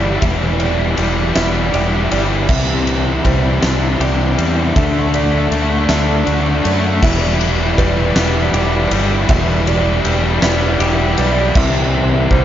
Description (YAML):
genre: post-rock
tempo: 53 BPM (dotted quarters)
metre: 6/8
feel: straight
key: E minor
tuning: A4 = 439 Hz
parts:
  - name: felt-muted upright piano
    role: arpeggios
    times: 0.0-12.4 s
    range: B4 to E5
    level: -26 LUFS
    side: right 5 dB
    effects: tape echo
  - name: semi-hollow electric guitar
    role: arpeggios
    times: 0.0-12.4 s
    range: E2 to G4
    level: -23 LUFS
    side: left 3 dB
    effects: tape echo
  - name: fuzz guitar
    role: riff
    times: 0.0-12.4 s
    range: C3 to A3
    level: -17 LUFS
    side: left 1 dB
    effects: distortion
  - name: growling fingered electric bass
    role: bass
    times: 0.0-12.4 s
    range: E1 to F#2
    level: -18 LUFS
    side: equal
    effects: overdrive
  - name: huge arena drum kit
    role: drums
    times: 0.2-12.4 s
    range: crash cymbal, kick drum, ride cymbal, snare drum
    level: -20 LUFS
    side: equal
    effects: none
room: light reverb, small room ambience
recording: nothing above 7.5 kHz, faint mains hum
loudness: -13 LUFS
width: side -11 dB against mid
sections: 0.0-12.4 A section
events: build-up 0.0-12.4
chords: 0.0 Em; 2.5 Cadd9; 4.8 D; 7.0 Em; 11.6 C